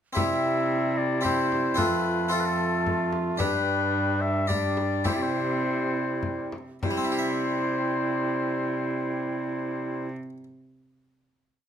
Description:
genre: classical, renaissance-style consort dance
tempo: 99-112 BPM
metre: 3/4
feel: straight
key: C major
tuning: A4 = 440 Hz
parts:
  - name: harpsichord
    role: accompaniment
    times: 0.1-10.4 s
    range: F2 to E5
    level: -31 LUFS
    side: left 1 dB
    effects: none
  - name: warm oboe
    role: melody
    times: 0.2-10.1 s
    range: A4 to E5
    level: -29 LUFS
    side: left 5 dB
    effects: none
  - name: bright tenor recorder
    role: second line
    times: 0.2-10.1 s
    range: D4 to F4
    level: -30 LUFS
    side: right 6 dB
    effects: none
  - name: clear bassoon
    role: accompaniment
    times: 0.2-10.1 s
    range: G3 to A3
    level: -32 LUFS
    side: left 3 dB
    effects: none
  - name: rich cello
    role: bass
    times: 0.2-10.1 s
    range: F2 to C3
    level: -31 LUFS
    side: right 2 dB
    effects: none
  - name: frame drum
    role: percussion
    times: 0.2-7.1 s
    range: none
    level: -32 LUFS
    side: left 3 dB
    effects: none
room: moderate large studio reverb, RT60 0.9 s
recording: minimal, uncompressed stereo recording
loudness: -24 LUFS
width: side -8 dB against mid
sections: 0.2-6.8 A section; 6.8-10.5 final chord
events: slowing down 2.6-6.8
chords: 0.2 C; 1.8 F; 3.4 G; 5.1 C

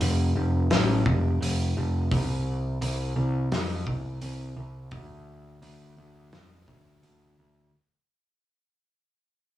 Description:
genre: rock, shoegaze and dream pop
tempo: 86 BPM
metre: 4/4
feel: straight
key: unclear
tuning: A4 = 440 Hz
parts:
  - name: growling picked electric bass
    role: bass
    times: 0.0-7.7 s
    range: F1 to F2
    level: -26 LUFS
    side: equal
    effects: overdrive
  - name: loose indie drum kit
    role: drums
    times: 0.0-7.2 s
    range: hi-hat, kick drum, snare drum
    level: -28 LUFS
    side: equal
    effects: cassette tape
room: little or no reverb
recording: home recording on cassette, small room ambience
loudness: -24 LUFS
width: side -13 dB against mid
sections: 0.0-7.7 A section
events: fade-out 0.0-7.7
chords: none

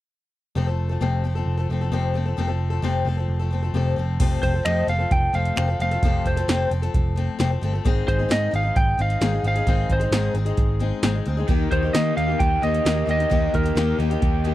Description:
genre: folk rock and heartland rock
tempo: 132 BPM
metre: 4/4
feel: straight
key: F mixolydian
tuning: A4 = 440 Hz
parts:
  - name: picked steel-string acoustic guitar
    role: accompaniment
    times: 0.6-14.5 s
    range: F2 to A4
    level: -27 LUFS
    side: left 6 dB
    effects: none
  - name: picked electric bass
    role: bass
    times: 0.6-14.5 s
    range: F1 to Eb3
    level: -23 LUFS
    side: right 1 dB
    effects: none
  - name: electro analog drum machine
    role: drums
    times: 4.2-14.5 s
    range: crash cymbal, finger snaps, hi-hat, kick drum, snare drum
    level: -23 LUFS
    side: right 1 dB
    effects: none
  - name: lightly driven lead guitar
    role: melody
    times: 4.4-14.0 s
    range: Bb4 to G5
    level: -24 LUFS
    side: right 1 dB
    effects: none
  - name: crunchy overdriven guitar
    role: riff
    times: 11.5-14.5 s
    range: Eb3 to G4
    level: -28 LUFS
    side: right 1 dB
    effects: none
room: little or no reverb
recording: dry, close 1970s-style studio recording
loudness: -19 LUFS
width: side -14 dB against mid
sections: 0.6-4.2 A section; 4.2-14.5 B section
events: none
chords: 0.6 F; 7.8 Ab; 11.5 Eb

